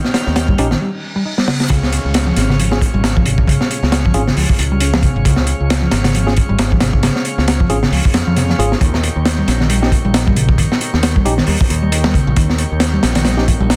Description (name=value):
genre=breakbeat, breaks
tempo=135 BPM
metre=4/4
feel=swing 57% on 16ths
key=unclear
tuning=A4 = 439 Hz
part: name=tonewheel organ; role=sustained chords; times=0.0-13.8 s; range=Db3 to F5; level=-28 LUFS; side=equal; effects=slow rotary speaker, sidechain pumping
part: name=crunchy breakbeat drum kit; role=drums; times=0.0-13.8 s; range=hi-hat, kick drum, snare drum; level=-18 LUFS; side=equal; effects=none
part: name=modern bright picked electric bass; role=bass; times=0.3-13.8 s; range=Ab1 to F2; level=-19 LUFS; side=equal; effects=none
part: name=hollow-body short-scale picked electric bass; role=riff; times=0.5-13.8 s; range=C3 to Eb4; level=-22 LUFS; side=equal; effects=tube saturation, vintage 12-bit sampler grit, digital delay
part: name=bright tine electric piano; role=stabs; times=0.6-13.4 s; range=Db4 to Ab4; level=-25 LUFS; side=equal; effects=digital delay
part: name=reverse cymbal and downlifter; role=sound effects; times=0.9-5.3 s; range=none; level=-31 LUFS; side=equal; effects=none
room=light reverb, small room ambience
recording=dense, heavily limited modern master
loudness=-15 LUFS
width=mono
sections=0.0-1.7 A section; 1.7-13.8 B section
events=break 0.8-1.7; reverse cymbal 0.9-1.7; drum fill 1.4-1.7; drop 1.7-13.8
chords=0.0 Eb7; 1.7 Db; 8.8 Eb7